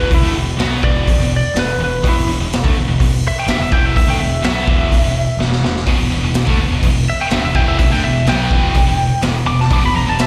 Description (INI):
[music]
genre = hard rock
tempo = 125 BPM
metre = 4/4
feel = straight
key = E minor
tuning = A4 = 442 Hz
[part]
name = lightly driven lead guitar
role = melody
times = 0.0-10.3 s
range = E4 to D6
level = -22 LUFS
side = equal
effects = slapback echo
[part]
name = biting overdriven guitar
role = riff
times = 0.0-10.3 s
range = E2 to B3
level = -26 LUFS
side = equal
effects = phaser, slapback echo
[part]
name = scooped high-gain guitar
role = riff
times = 0.0-10.3 s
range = E2 to B3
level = -24 LUFS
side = equal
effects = distortion, slapback echo
[part]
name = growling fingered electric bass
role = bass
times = 0.0-10.3 s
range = E1 to D2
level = -22 LUFS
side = equal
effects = overdrive
[part]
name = raw garage drum kit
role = drums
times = 0.1-10.3 s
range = hi-hat, kick drum, snare drum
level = -19 LUFS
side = equal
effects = none
[part]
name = heavy high-gain guitar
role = riff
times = 5.9-10.3 s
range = E2 to B3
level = -24 LUFS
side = equal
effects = distortion, slapback echo
[sound]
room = little or no reverb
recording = live gig heard through the venue's PA, recital hall reverb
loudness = -15 LUFS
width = mono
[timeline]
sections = 0.0-10.3 A section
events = lead electric guitar solo 0.0-10.3; drum fill 5.4-5.9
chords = 0.0 E5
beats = | 0.11 0.59 1.07 1.55 | 2.04 2.52 3.00 3.48 | 3.96 4.44 4.92 5.40 | 5.88 6.36 6.84 7.32 | 7.80 8.28 8.76 9.24 | 9.72 10.20